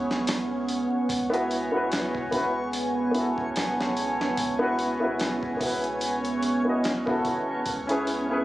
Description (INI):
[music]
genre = trip hop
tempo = 73 BPM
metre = 4/4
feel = swing 57% on 16ths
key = unclear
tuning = A4 = 440 Hz
[part]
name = warm upright piano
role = accompaniment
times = 0.0-8.4 s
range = B3 to D#5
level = -27 LUFS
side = equal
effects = harmonic tremolo, vintage 12-bit sampler grit, tape echo
[part]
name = deep dark ambient pad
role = sustained chords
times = 0.0-8.4 s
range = B3 to G#5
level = -28 LUFS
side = right 1 dB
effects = chorus, built-in reverb
[part]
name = soft dub sub bass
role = bass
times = 0.0-8.4 s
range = G#1 to C#2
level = -44 LUFS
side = equal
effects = none
[part]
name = backwards swelling texture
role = texture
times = 0.0-8.4 s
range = C#4 to C#5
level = -35 LUFS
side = right 1 dB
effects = built-in reverb
[part]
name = dusty soul sampler-style drum kit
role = drums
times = 0.1-8.3 s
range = hi-hat, kick drum, snare drum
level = -32 LUFS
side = equal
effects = none
[sound]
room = light reverb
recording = recorded on a phone in the room, club reverb, vinyl crackle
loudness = -24 LUFS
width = side -16 dB against mid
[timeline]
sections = 0.0-8.4 A section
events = none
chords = 0.0 C#m7; 1.1 Bsus4/C#; 7.7 C#m7